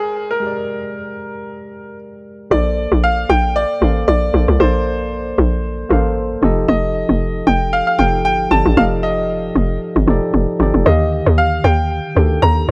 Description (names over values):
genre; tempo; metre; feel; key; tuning
amapiano; 115 BPM; 4/4; swing 55% on 16ths; Bb major; A4 = 441 Hz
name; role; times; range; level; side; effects
clear baby grand piano; melody; 0.0-12.7 s; Ab4 to Bb5; -22 LUFS; equal; low-pass filter, tape echo
tine electric piano; accompaniment; 0.0-12.7 s; D3 to G5; -24 LUFS; equal; low-pass filter
tight log drum bass; bass; 2.5-12.7 s; F1 to Eb2; -18 LUFS; equal; none
room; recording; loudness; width
small room reverb; none; -16 LUFS; mono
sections
0.0-2.5 A section; 2.5-12.7 B section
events
filter sweep 0.0-2.5; drop 2.5-12.7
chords
0.0 Abmaj9; 2.5 Bbmaj9; 6.4 F13; 10.9 Ebmaj9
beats
| 0.43 0.95 1.47 1.99 | 2.51 3.03 3.56 4.08 | 4.60 5.12 5.64 6.17 | 6.69 7.21 7.73 8.25 | 8.77 9.29 9.82 10.34 | 10.86 11.38 11.90 12.43